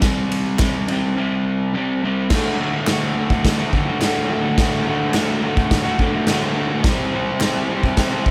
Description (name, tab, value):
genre	garage rock duo or trio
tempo	106 BPM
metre	4/4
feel	straight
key	D mixolydian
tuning	A4 = 439 Hz
part	crunchy overdriven guitar	riff	0.0-8.3 s	D2 to C5	-22 LUFS	equal	none
part	raw garage drum kit	drums	0.0-8.3 s	crash cymbal, kick drum, ride cymbal, snare drum	-23 LUFS	equal	none
part	group handclap	percussion	0.6-7.5 s	none	-31 LUFS	equal	none
room	light reverb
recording	none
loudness	-20 LUFS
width	mono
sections	0.0-2.3 A section; 2.3-8.3 B section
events	none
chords	0.0 C5; 2.3 D; 6.8 C